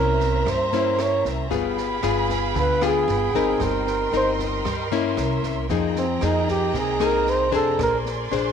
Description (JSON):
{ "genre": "bossa nova", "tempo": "115 BPM", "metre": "4/4", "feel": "straight", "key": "unclear", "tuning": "A4 = 440 Hz", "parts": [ { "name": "mellow flugelhorn", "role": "melody", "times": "0.0-8.0 s", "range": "C4 to Db5", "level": "-23 LUFS", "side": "right 4 dB", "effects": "none" }, { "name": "nylon-string guitar", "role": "accompaniment", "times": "0.0-8.5 s", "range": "C3 to C5", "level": "-24 LUFS", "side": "left 10 dB", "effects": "none" }, { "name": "warm symphonic violin section", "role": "sustained chords", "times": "0.0-8.5 s", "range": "Ab4 to C6", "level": "-29 LUFS", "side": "right 3 dB", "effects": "none" }, { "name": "upright bass", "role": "bass", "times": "0.0-8.5 s", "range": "G1 to G2", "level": "-28 LUFS", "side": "right 2 dB", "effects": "none" }, { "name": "open jazz drum kit", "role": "drums", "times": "0.2-8.4 s", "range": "kick drum, rim click, snare drum", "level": "-34 LUFS", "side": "right 8 dB", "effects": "none" } ], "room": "moderate spring reverb, RT60 2.0 s", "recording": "1960s-style stereo with parts hard left and right", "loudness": "-20 LUFS", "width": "side -7 dB against mid", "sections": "0.0-8.5 A section", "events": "flugelhorn solo 0.0-8.5", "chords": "0.0 C7b9; 1.5 G7b9; 3.6 Cm7/G; 5.2 C7b9; 5.7 Fm11; 7.8 Bb9", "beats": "0.47 0.99 | 1.51 2.04 2.56 3.08 | 3.61 4.13 4.66 5.18 | 5.70 6.22 6.75 7.27 | 7.79 8.32" }